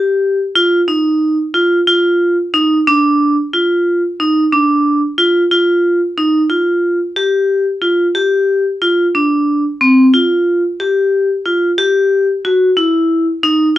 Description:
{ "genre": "progressive instrumental, progressive", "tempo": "182 BPM (eighths)", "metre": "11/8", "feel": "straight", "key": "D phrygian", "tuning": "A4 = 440 Hz", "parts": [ { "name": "vibraphone with hard mallets", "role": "solo", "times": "0.0-13.8 s", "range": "C4 to G4", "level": "-11 LUFS", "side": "equal", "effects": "none" } ], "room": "moderate studio ambience, RT60 0.5 s", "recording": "none", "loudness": "-11 LUFS", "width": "side -14 dB against mid", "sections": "0.0-6.5 A section; 6.5-13.8 B section", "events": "none", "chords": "none", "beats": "0.23 0.56 0.89 1.22 1.55 1.88 2.21 2.54 | 2.87 3.20 3.53 3.86 4.19 4.52 4.85 5.18 5.51 5.84 6.17 | 6.50 6.83 7.16 7.49 7.82 8.15 8.48 8.81 9.14 9.48 9.81 | 10.14 10.47 10.80 11.13 11.46 11.79 12.12 12.45 12.78 13.11 13.44 | 13.77" }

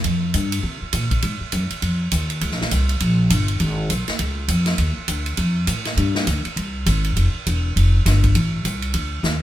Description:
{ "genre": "jazz, big band swing", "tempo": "202 BPM", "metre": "4/4", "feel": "swing 60% on 8ths", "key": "unclear", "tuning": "A4 = 440 Hz", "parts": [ { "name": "upright bass", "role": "bass", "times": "0.0-9.4 s", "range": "E1 to C3", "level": "-19 LUFS", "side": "equal", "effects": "none" }, { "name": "swinging big-band drum kit", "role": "drums", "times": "0.0-9.3 s", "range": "hi-hat, kick drum, ride cymbal, snare drum", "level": "-24 LUFS", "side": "right 1 dB", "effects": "none" } ], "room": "little or no reverb", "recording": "minimal, uncompressed stereo recording", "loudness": "-18 LUFS", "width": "side -13 dB against mid", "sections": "0.0-9.4 A section", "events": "drum fill 9.2", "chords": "none", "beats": "| 0.04 0.34 0.64 0.93 | 1.23 1.53 1.82 2.12 | 2.42 2.71 3.01 3.31 | 3.60 3.90 4.20 4.49 | 4.79 5.09 5.38 5.68 | 5.98 6.27 6.57 6.87 | 7.16 7.46 7.76 8.05 | 8.35 8.65 8.95 9.24" }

